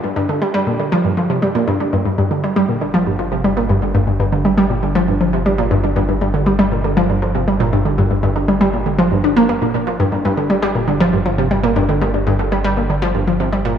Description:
ambient, sequencer-driven space music; 119 BPM; 4/4; straight; G minor; A4 = 440 Hz
analog pluck; riff; 0.0-13.7 s; G2 to D4; -15 LUFS; equal; chorus, analog delay
round analog bass; bass; 1.9-13.8 s; G1; -22 LUFS; equal; tube saturation
wet spring reverb, RT60 2.9 s; echo-heavy mix, studio ambience; -14 LUFS; side -8 dB against mid
0.0-1.9 A section; 1.9-13.8 B section
fade-out 12.7-13.8
0.0 Gm; 1.9 N.C.

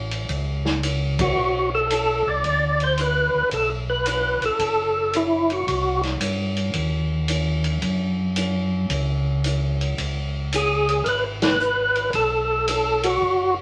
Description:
soul jazz organ trio; 111 BPM; 4/4; swing 67% on 8ths; F# minor; A4 = 440 Hz
mellow tonewheel organ; bass; 0.0-13.6 s; F#1 to G2; -28 LUFS; equal; chorus vibrato, slow rotary speaker
swinging big-band drum kit; drums; 0.1-13.4 s; hi-hat, kick drum, ride cymbal, snare drum; -30 LUFS; equal
percussive tonewheel organ; melody; 1.2-6.0, 10.6-13.5 s; E4 to D5; -22 LUFS; equal; slow rotary speaker, overdrive, chorus vibrato
wet studio reverb, RT60 0.6 s; -22 LUFS; mono
0.0-13.6 A section
band accent 1.1, 11.3
0.0 F#m; 1.4 Bm7; 5.7 Cm; 7.8 F#5; 10.0 C#5; 12.1 B5

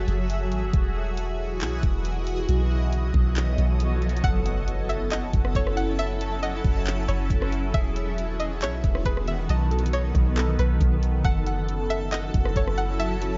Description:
hip hop, atmospheric cloud-rap; 137 BPM; 4/4; half-time; F# dorian; A4 = 440 Hz
shimmering ambient pad; sustained chords; 0.0-13.4 s; D#3 to E5; -33 LUFS; equal; chorus, built-in reverb, phaser, sidechain pumping
soft 808-style bass; bass; 0.0-13.4 s; E1 to B1; -28 LUFS; equal
smooth R&B drum kit; drums; 0.1-13.3 s; handclaps, hi-hat, kick drum, rim click; -28 LUFS; equal
riser and impact; sound effects; 2.4-6.0 s; -39 LUFS; equal
string-like resonator pluck; melody; 4.2-13.4 s; B4 to F#5; -34 LUFS; equal; chorus, tape echo
glassy digital keys; arpeggios; 4.2-13.4 s; G#4 to A5; -37 LUFS; equal; chorus, tape echo
digital ambience; nothing above 7.6 kHz; -25 LUFS; mono
0.0-4.2 A section; 4.2-13.4 B section
impact 4.2-6.0
0.0 F#m7; 0.7 Emaj7; 2.5 B7; 4.2 F#m7; 7.7 Emaj7; 9.5 B7; 11.2 F#m7

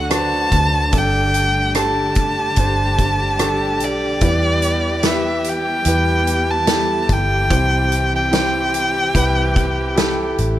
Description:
pop ballad; 73 BPM; 4/4; straight; E minor; A4 = 439 Hz
rich violin; melody; 0.0-10.4 s; D5 to A5; -19 LUFS; equal
warm concert grand piano; accompaniment; 0.0-10.6 s; G2 to C5; -22 LUFS; right 1 dB
warm studio string section; sustained chords; 0.0-10.6 s; D3 to G4; -27 LUFS; left 2 dB
vintage muted fingered electric bass; bass; 0.0-10.6 s; G1 to E2; -22 LUFS; equal
loose indie drum kit; drums; 0.1-10.6 s; hi-hat, kick drum, rim click, snare drum; -20 LUFS; equal
small room ambience; -15 LUFS; side -13 dB against mid
0.0-10.6 A section
0.0 D; 0.9 Gsus2; 4.2 Em; 7.5 C

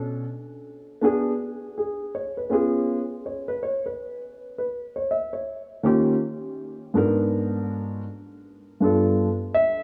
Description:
hip hop; 81 BPM; 4/4; swing 60% on 16ths; A4 = 435 Hz
dark concert grand piano; solo; 0.0-9.8 s; G2 to E5; -25 LUFS; equal
moderate plate reverb, RT60 3.2 s; worn, warbling old tape, cassette tape, warbly pitch drift, small room ambience; -25 LUFS; mono
0.0-9.8 A section
0.0 Bm7; 1.0 G#m7b5; 2.5 C#7; 4.0 N.C.; 5.5 D#7; 7.0 G#m7b5; 8.4 G9

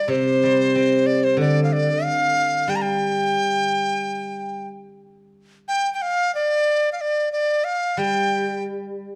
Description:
chinese traditional, Chinese chamber ensemble; 92 BPM; 4/4; rubato; A4 = 444 Hz
bright dizi; melody; 0.0-8.6 s; C5 to Bb5; -23 LUFS; equal
steel-string zither; accompaniment; 0.0-9.2 s; C3 to C4; -24 LUFS; equal
moderate recital hall reverb, RT60 1.4 s; dark, warm production; -21 LUFS; mono
0.0-5.3 A section; 5.3-9.2 B section

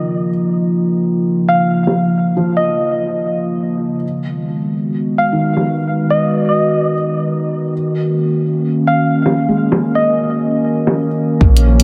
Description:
future garage; 130 BPM; 4/4; swing 67% on 16ths; A4 = 440 Hz
felt-muted upright piano; accompaniment; 0.0-11.4 s; Eb3 to Ab3; -26 LUFS; equal; sidechain pumping, tape echo
warbly tape-like pad; sustained chords; 0.0-11.8 s; Db3 to Db5; -18 LUFS; equal; chorus, built-in reverb, sidechain pumping
soft struck synth lead; melody; 1.5-10.4 s; Eb5 to F5; -21 LUFS; equal; chorus, tape echo
electronic bongos and hi-hat; drums; 1.9, 5.6, 9.3-11.8 s; -20 LUFS; equal; low-pass filter on hats, low-pass filter on snare, low-pass filter on perc, low-pass filter on room
soft 808-style bass; bass; 11.4-11.8 s; Bb1; -13 LUFS; equal; sidechain pumping
electronic kick drum; drums; 11.4-11.5 s; -12 LUFS; equal
wet huge ambient reverb, RT60 3.9 s; dreamy mix soaked in reverb; -16 LUFS; mono
0.0-11.4 A section
filter sweep on ambient pad 0.0-11.4
0.0 Bbm; 4.0 Abm7; 7.7 Ebm7

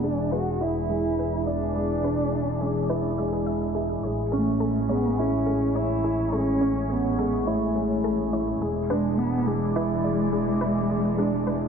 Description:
electronica; 105 BPM; 4/4; straight; A major; A4 = 440 Hz
dark cello; melody; 0.0-11.7 s; G#3 to F#4; -27 LUFS; equal; tape echo
lush unison pad; sustained chords; 0.0-11.7 s; E3 to D5; -32 LUFS; left 2 dB; chorus, phaser
analog pluck; arpeggios; 0.0-11.5 s; G#4 to E5; -36 LUFS; left 4 dB; chorus, tape echo
felt-muted upright piano; riff; 0.0-11.7 s; G#3 to E4; -27 LUFS; right 2 dB; tape echo
rich studio double bass section; bass; 0.0-11.7 s; E1 to A1; -30 LUFS; equal
moderate scoring stage reverb, RT60 1.6 s, small room ambience; dark, warm production, low-pass filter; -22 LUFS; side -6 dB against mid
0.0-11.7 A section
filter sweep on synth arpeggio sound 0.0-11.7; filter sweep 0.0-11.7
0.0 E7; 4.0 Amaj7; 8.6 E7

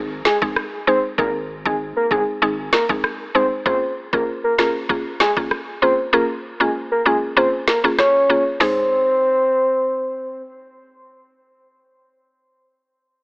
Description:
dancehall; 97 BPM; 4/4; straight; Ab major; A4 = 439 Hz
mallet-like synth pluck; accompaniment; 0.0-11.7 s; Ab3 to Ab4; -20 LUFS; equal; chorus
saturated sub bass; bass; 0.0-3.5 s; F1 to Ab1; -38 LUFS; equal
soft octave-layered synth lead; melody; 0.3-10.4 s; Ab4 to Db5; -19 LUFS; equal; chorus
island pop drum kit; drums; 0.3-8.8 s; hi-hat, kick drum, rim click, snare drum, toms; -21 LUFS; equal
light reverb; AM radio sound; -16 LUFS; side -37 dB against mid
0.0-8.6 A section; 8.6-11.1 B section
kick muted 6.1-8.6
0.0 Ab; 3.7 Bbm7; 8.6 Ab

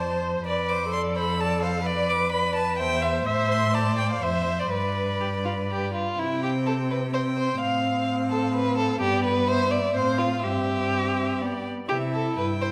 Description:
quick classical-period movement for string quartet; 127 BPM; 3/4; straight; C major; A4 = 440 Hz
rich violin; melody; 0.0-12.7 s; C5 to D6; -33 LUFS; equal
warm violin; second line; 0.0-12.7 s; E4 to F5; -30 LUFS; equal
warm viola; accompaniment; 0.0-12.7 s; B3 to E5; -30 LUFS; equal
rich cello; bass; 0.0-12.7 s; E2 to C3; -32 LUFS; equal
wet recital hall reverb, RT60 1.4 s; -25 LUFS; mono
0.0-6.2 A section; 6.2-12.7 B section
0.0 Dm7/F; 1.9 Bm7b5/F; 2.8 C/E; 3.3 Am; 4.2 Dm9/F; 4.7 G; 6.2 C5; 7.6 F/A; 9.0 G; 10.0 F/A; 10.4 C/G; 11.4 G; 11.9 C

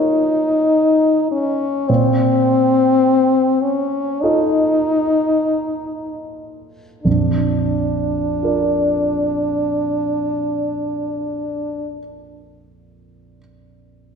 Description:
classical, romantic duo for French horn and grand piano; 38-54 BPM; 4/4; rubato; A4 = 439 Hz
clear French horn; melody; 0.0-12.0 s; C4 to Eb4; -16 LUFS; left 2 dB
warm concert grand piano; accompaniment; 0.0-14.2 s; Bb1 to Eb5; -21 LUFS; right 3 dB
wet scoring stage reverb, RT60 1.5 s; dark, warm production; -15 LUFS; side -6 dB against mid
0.0-7.1 A section; 7.1-12.5 B section
slowing down 0.0-7.1
0.0 Bbm; 1.9 F7/Bb; 7.1 Bb

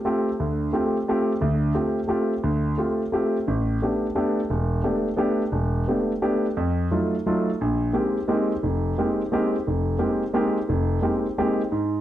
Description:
jazz; 175 BPM; 3/4; swing 65% on 8ths; A4 = 443 Hz
warm concert grand piano; solo; 0.0-12.0 s; E1 to G4; -21 LUFS; equal; slapback echo
moderate booth ambience, RT60 0.2 s; dry, close 1970s-style studio recording; -21 LUFS; side -12 dB against mid
0.0-7.6 A section; 7.6-12.0 B section
0.0 G9sus4; 3.5 A9sus4; 6.6 F7b9; 7.6 Bb13sus4

